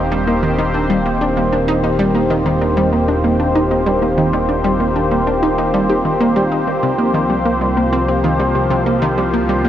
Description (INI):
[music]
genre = ambient, sequencer-driven space music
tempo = 96 BPM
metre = 4/4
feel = straight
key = unclear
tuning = A4 = 440 Hz
[part]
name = sweeping resonant pad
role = sustained chords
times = 0.0-9.7 s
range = Eb3 to C5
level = -17 LUFS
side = left 1 dB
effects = chorus
[part]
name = analog pluck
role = riff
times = 0.0-9.7 s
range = C3 to G4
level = -18 LUFS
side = equal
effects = chorus, tape echo
[part]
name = fat analog bass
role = bass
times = 0.0-9.7 s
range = Eb1 to C2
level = -23 LUFS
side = equal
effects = none
[part]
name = bubbling stepped-filter texture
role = texture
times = 0.0-9.7 s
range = F4 to F5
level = -30 LUFS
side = equal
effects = none
[sound]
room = wet huge ambient reverb, RT60 8.1 s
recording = worn, warbling old tape, cassette tape, warbly pitch drift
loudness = -13 LUFS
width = side -11 dB against mid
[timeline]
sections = 0.0-9.7 A section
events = none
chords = 0.0 Eb6; 6.8 C7sus4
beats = 0.58 1.21 | 1.83 2.46 3.08 3.71 | 4.33 4.96 5.58 6.21 | 6.83 7.46 8.08 8.71 | 9.33